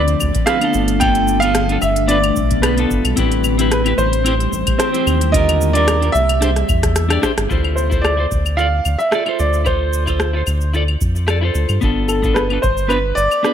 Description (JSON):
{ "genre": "sunset chillout", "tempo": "111 BPM", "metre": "4/4", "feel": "swing 53% on 16ths", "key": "D dorian", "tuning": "A4 = 440 Hz", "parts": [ { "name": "warm grand piano", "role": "melody", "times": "0.0-13.5 s", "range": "A4 to G5", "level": "-19 LUFS", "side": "right 1 dB", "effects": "tape echo" }, { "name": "ethereal airy pad", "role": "sustained chords", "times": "0.0-7.5 s", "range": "D3 to G4", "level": "-23 LUFS", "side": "left 2 dB", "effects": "ensemble chorus, built-in reverb" }, { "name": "round analog bass", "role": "bass", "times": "0.0-13.3 s", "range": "G1 to G2", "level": "-18 LUFS", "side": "equal", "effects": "none" }, { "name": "smooth R&B drum kit", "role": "drums", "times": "0.1-13.5 s", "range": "cabasa, claves, hi-hat, rim click", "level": "-22 LUFS", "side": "left 2 dB", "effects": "studio reverb" }, { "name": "electronic kick drum", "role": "drums", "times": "0.2-12.8 s", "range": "none", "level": "-21 LUFS", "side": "equal", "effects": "studio reverb" }, { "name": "clean electric guitar", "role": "accompaniment", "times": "0.5-13.5 s", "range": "D3 to D5", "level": "-21 LUFS", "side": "moving between left 4 dB and right 5 dB", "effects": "auto-pan, vintage 12-bit sampler grit, ping-pong delay" } ], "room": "light reverb", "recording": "none", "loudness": "-14 LUFS", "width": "side -9 dB against mid", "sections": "0.0-7.5 A section; 7.5-13.5 B section", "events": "drum fill 6.4-7.5", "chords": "0.0 Dm7; 0.7 G9; 3.2 Am7; 5.3 Ebmaj7; 6.4 Cmaj7; 7.5 Dm9; 11.8 G9", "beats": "0.47 | 1.01 1.55 2.09 2.63 | 3.17 3.71 4.26 4.80 | 5.34 5.88 6.42 6.96 | 7.50 8.04 8.58 9.12 | 9.66 10.20 10.74 11.28 | 11.82 12.36 12.90 13.45" }